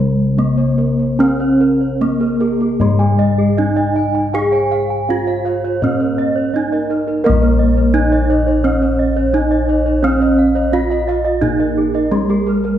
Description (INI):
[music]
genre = gamelan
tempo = 73-86 BPM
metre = 4/4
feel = straight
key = Bb slendro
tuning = A4 = 440 Hz
[part]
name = gamelan-type bronze metallophone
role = melody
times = 0.0-12.8 s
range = Ab3-40c to Ab4-40c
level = -16 LUFS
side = right 2 dB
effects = none
[part]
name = gamelan-type bossed gongs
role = arpeggios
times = 0.0-12.8 s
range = Ab4-40c to Ab5-40c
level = -23 LUFS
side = left 2 dB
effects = none
[part]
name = gamelan-type bossed gongs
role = bass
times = 0.0-12.8 s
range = Bb1 to Bb4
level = -17 LUFS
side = left 1 dB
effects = none
[part]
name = gamelan-type bronze metallophone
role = arpeggios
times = 1.2-12.8 s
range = Ab4-40c to Ab5-40c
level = -23 LUFS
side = right 5 dB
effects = none
[sound]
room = wet recital hall reverb, RT60 1.3 s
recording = heard from further back in the room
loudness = -13 LUFS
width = side -10 dB against mid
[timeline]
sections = 0.0-7.2 A section; 7.2-12.8 B section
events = none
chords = none